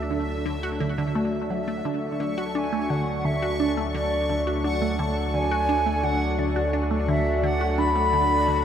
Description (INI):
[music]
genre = ambient, sequencer-driven space music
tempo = 86 BPM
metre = 4/4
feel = straight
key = D lydian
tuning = A4 = 440 Hz
[part]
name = lush unison pad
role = sustained chords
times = 0.0-8.6 s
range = F#3 to A4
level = -28 LUFS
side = equal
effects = chorus
[part]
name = resonant blip pluck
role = riff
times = 0.0-8.6 s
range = D3 to F#4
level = -27 LUFS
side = right 1 dB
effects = phaser, tape echo
[part]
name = warm sub bass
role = bass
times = 0.0-8.6 s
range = D2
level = -30 LUFS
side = equal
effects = none
[part]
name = bubbling stepped-filter texture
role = texture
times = 0.0-8.6 s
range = F#4 to C#6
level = -36 LUFS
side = left 1 dB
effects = chorus, built-in reverb
[part]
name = breathy wooden flute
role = melody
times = 2.5-8.6 s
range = D5 to B5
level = -26 LUFS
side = equal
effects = tape echo
[sound]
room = wet cathedral reverb, RT60 4.8 s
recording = in a vast, echoing space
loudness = -22 LUFS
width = side -9 dB against mid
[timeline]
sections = 0.0-8.6 A section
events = fade-in on analog synth pad 0.0-8.6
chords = 0.0 D